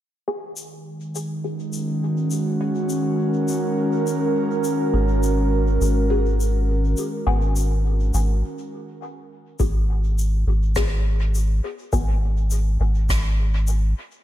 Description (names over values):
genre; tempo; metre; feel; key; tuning
ambient dub; 103 BPM; 4/4; straight; G# minor; A4 = 439 Hz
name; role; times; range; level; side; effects
airy breathy pad; sustained chords; 0.9-8.4 s; D#3 to A#4; -23 LUFS; right 1 dB; chorus
filtered dub chord stab; stabs; 0.3-12.1 s; B3 to G#4; -31 LUFS; left 3 dB; phaser, wide subtle chorus, vintage 12-bit sampler grit, dub echo
shaker and rim click; drums; 0.6-13.8 s; none; -33 LUFS; left 2 dB; dub echo
soft dub sub bass; bass; 4.9-13.9 s; G#1; -20 LUFS; equal; none
electronic kick drum; drums; 9.6-13.2 s; none; -26 LUFS; equal; none
room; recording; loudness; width
light reverb, small room ambience; none; -19 LUFS; side -12 dB against mid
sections
0.3-9.6 A section; 9.6-14.2 B section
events
filter sweep on analog synth pad 0.3-9.6; break 8.4-9.6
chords
0.3 G#7(no3); 9.6 N.C.